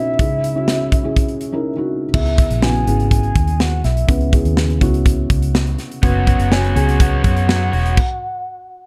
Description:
piano-driven pop; 123 BPM; 4/4; straight; A4 = 437 Hz
soft octave-layered synth lead; melody; 0.0-8.9 s; E5 to G#5; -26 LUFS; equal; chorus, phaser
felt-muted upright piano; accompaniment; 0.0-8.0 s; B1 to C#5; -24 LUFS; equal
modern studio drum kit; drums; 0.2-8.1 s; crash cymbal, hi-hat, kick drum, snare drum; -20 LUFS; equal
vintage muted fingered electric bass; bass; 2.1-8.0 s; E1 to F#2; -20 LUFS; equal
crunchy overdriven guitar; riff; 6.0-8.0 s; F#3 to C#5; -26 LUFS; equal
small room ambience; dark, warm production; -17 LUFS; mono
0.0-2.1 A section; 2.1-8.9 B section
break 1.7-2.1; stop 8.0-8.9
0.2 C#madd9; 2.1 C#m7; 6.0 F#sus4

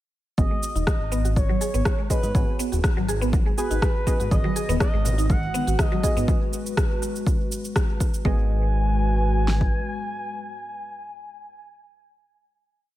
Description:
afro house; 122 BPM; 4/4; straight; G# minor; A4 = 440 Hz
expressive portamento lead; melody; 0.4-11.7 s; B4 to G#5; -31 LUFS; equal; chorus, analog delay
deep mellow chord stab; stabs; 0.4-11.7 s; B3 to G#5; -32 LUFS; right 3 dB; chorus, sidechain pumping, analog delay
smooth gliding synth bass; bass; 0.4-9.7 s; D#1 to G#2; -24 LUFS; equal; sidechain pumping
deep house drum kit; drums; 0.4-9.7 s; kick drum, snare drum; -23 LUFS; equal; overdrive, studio reverb
electronic cabasa and rim click; drums; 0.4-8.2 s; -31 LUFS; equal; overdrive, studio reverb, analog delay
mallet-like synth pluck; arpeggios; 0.5-8.5 s; F#3 to G#4; -30 LUFS; equal; wide subtle chorus, sidechain pumping, analog delay
dark analog pad; sustained chords; 5.0-11.7 s; G#3 to B4; -32 LUFS; left 2 dB; chorus, sidechain pumping
congas; percussion; 4.3-6.0 s; -32 LUFS; right 3 dB; analog delay
light reverb; echo-heavy mix; -20 LUFS; side -14 dB against mid
0.4-8.2 groove; 8.2-12.2 final chord
filter sweep on synth arpeggio sound 0.4-6.3
0.4 G#m7

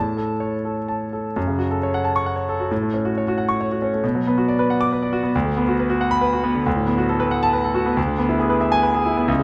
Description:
classical, virtuoso piano study; 91 BPM (dotted quarters); 6/8; rubato; F# minor; A4 = 436 Hz
clear concert grand piano; solo; 0.0-9.4 s; C#2 to D6; -21 LUFS; equal
moderate recital hall reverb, RT60 1.6 s; close, detailed microphones; -21 LUFS; mono
0.0-1.4 A section; 1.4-9.4 B section
0.0 A; 1.4 F#m; 2.7 F#m/A; 4.0 Bm; 5.3 Bm/D; 6.7 Bm7/D; 8.0 E7/D

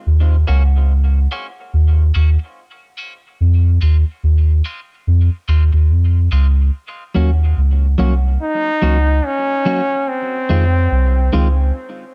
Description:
dub reggae; 72 BPM; 4/4; swing 59% on 16ths; Eb dorian; A4 = 437 Hz
soft dub sub bass; bass; 0.1-11.7 s; C2 to F2; -14 LUFS; equal
clean electric guitar; accompaniment; 0.5-11.5 s; Eb3 to Gb4; -26 LUFS; equal; high-pass filter, dub echo
brilliant trombone; melody; 8.4-11.7 s; C4 to Eb4; -21 LUFS; equal; dub echo
small room ambience; dark, warm production; -16 LUFS; mono
0.0-6.7 A section; 6.7-12.1 B section
break 0.0-3.4; filter sweep on clean electric guitar 0.0-6.7
0.1 Ebm7; 3.4 Fm7; 6.7 Ebm7; 10.1 Fm7

